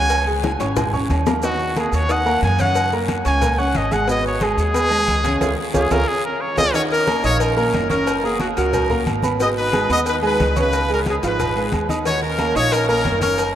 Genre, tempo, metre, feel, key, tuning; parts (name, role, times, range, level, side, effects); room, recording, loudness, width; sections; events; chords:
latin, salsa; 181 BPM; 4/4; straight; Eb minor; A4 = 439 Hz
bright trumpet; melody; 0.0-6.7 s; Gb4 to Ab5; -22 LUFS; equal
clear upright piano; accompaniment; 0.0-13.5 s; Cb3 to Eb6; -22 LUFS; right 1 dB
upright bass; bass; 0.0-13.6 s; Gb1 to Gb2; -24 LUFS; equal
agogo bells and timbales; percussion; 0.1-13.6 s; -28 LUFS; right 5 dB
congas; percussion; 0.1-13.6 s; -29 LUFS; left 1 dB
cowbell and bongos; percussion; 0.1-13.6 s; -29 LUFS; left 6 dB
guiro; percussion; 0.1-13.6 s; -37 LUFS; left 5 dB
maracas; percussion; 0.1-13.6 s; -38 LUFS; right 6 dB
brilliant horn section; melody; 6.8-13.5 s; Bb3 to Eb5; -20 LUFS; left 1 dB
wet cathedral reverb, RT60 5.9 s; in a vast, echoing space; -16 LUFS; side -11 dB against mid
0.0-6.7 A section; 6.7-13.6 B section
trumpet solo 0.0-6.7; drum fill 0.4-1.4; band accent 5.4-6.7
0.1 Db5; 1.4 Ebm7; 2.8 Gb; 4.1 Abm; 5.4 Db; 6.7 Ebm7; 8.1 Gb; 9.4 Abm; 10.7 Db; 12.1 Ebm7